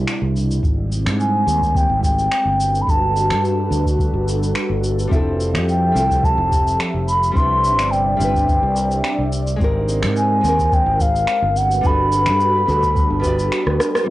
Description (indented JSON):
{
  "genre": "sunset chillout",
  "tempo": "107 BPM",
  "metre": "4/4",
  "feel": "straight",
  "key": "unclear",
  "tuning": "A4 = 443 Hz",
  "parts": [
    { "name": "airy breathy pad", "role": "sustained chords", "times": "0.0-14.1 s", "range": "B2 to E5", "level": "-24 LUFS", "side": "right 1 dB", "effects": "chorus, cassette tape" },
    { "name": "fretless electric bass", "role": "bass", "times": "0.0-13.8 s", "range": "F1 to Ab2", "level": "-21 LUFS", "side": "equal", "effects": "none" },
    { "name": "electronic finger snaps, shaker and rim click", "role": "drums", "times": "0.1-14.1 s", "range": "none", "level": "-25 LUFS", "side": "equal", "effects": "cassette tape" },
    { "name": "electronic kick drum", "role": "drums", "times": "0.6-13.4 s", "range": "none", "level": "-20 LUFS", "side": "equal", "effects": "cassette tape" },
    { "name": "mellow hollow wooden flute", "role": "melody", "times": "1.2-13.5 s", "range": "F5 to C6", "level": "-18 LUFS", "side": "equal", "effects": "cassette tape, analog delay" },
    { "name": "nylon-string guitar", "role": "accompaniment", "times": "5.1-14.1 s", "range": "G3 to D5", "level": "-25 LUFS", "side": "equal", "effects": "auto-pan, cassette tape" }
  ],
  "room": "moderate studio reverb, RT60 0.5 s",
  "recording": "home recording on cassette, low-pass filter, nothing above 10.8 kHz",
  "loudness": "-15 LUFS",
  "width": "side -16 dB against mid",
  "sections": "0.0-14.1 A section",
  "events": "drum fill 13.7-14.1; band accent 13.9",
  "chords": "0.0 Cmaj9; 0.6 Abmaj7; 2.6 Gmaj9; 5.1 Fmaj9; 7.4 Cmaj9; 9.6 Abmaj9; 11.6 Gmaj9"
}